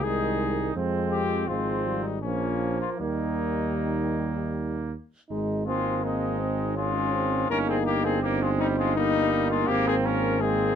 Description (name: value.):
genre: classical, brass quintet.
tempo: 82 BPM.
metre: 3/4.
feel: rubato.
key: Ab major.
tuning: A4 = 441 Hz.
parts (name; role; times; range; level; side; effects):
warm trumpet; melody; 0.0-10.8 s; Db4 to Bb4; -29 LUFS; left 10 dB; none.
warm trumpet; second line; 0.0-10.8 s; G3 to Eb4; -32 LUFS; right 6 dB; none.
clear trombone; accompaniment; 0.0-10.8 s; Eb3 to Eb4; -31 LUFS; right 4 dB; none.
warm French horn; accompaniment; 0.0-10.8 s; F3 to Eb4; -31 LUFS; left 5 dB; none.
warm tuba; bass; 0.0-10.8 s; G1 to F2; -29 LUFS; right 4 dB; none.
room: moderate studio ambience, RT60 0.5 s.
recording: dark, warm production.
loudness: -24 LUFS.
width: side -8 dB against mid.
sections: 0.0-5.3 A section; 5.3-10.8 B section.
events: none.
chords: 0.0 Ab/C; 0.8 Fm; 2.2 Bbm; 3.0 Eb; 5.3 Ab; 6.8 Db/Ab; 7.5 Eb/G; 9.7 Ab.